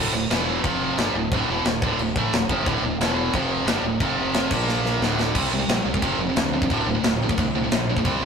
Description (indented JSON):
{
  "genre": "heavy metal",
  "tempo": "178 BPM",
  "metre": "4/4",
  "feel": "straight",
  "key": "D minor",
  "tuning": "A4 = 445 Hz",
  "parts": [
    { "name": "heavy high-gain guitar", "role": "riff", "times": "0.0-8.2 s", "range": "D2 to C4", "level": "-23 LUFS", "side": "right 1 dB", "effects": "distortion" },
    { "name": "growling fingered electric bass", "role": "bass", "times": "0.0-8.2 s", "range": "D1 to D2", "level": "-28 LUFS", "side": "equal", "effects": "overdrive" },
    { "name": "tight metal drum kit", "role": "drums", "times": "0.3-8.1 s", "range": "crash cymbal, kick drum, snare drum", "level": "-24 LUFS", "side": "left 1 dB", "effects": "none" }
  ],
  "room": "moderate small room reverb, RT60 0.5 s",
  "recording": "rough rehearsal-room recording",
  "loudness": "-20 LUFS",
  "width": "side -6 dB against mid",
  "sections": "0.0-5.3 A section; 5.3-8.2 B section",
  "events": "drum fill 4.7-5.3",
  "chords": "0.3 E5; 0.6 F5; 1.0 Dm; 3.0 E5; 3.3 F5; 3.7 D5; 4.0 F5; 4.5 Bb5; 5.0 D5; 5.3 C5; 6.0 F5; 6.7 D5",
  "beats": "0.30 0.63 0.97 | 1.31 1.65 1.98 2.32 | 2.65 2.99 3.33 3.67 | 4.00 4.34 4.68 5.01 | 5.35 5.69 6.02 6.36 | 6.70 7.03 7.37 7.71 | 8.04"
}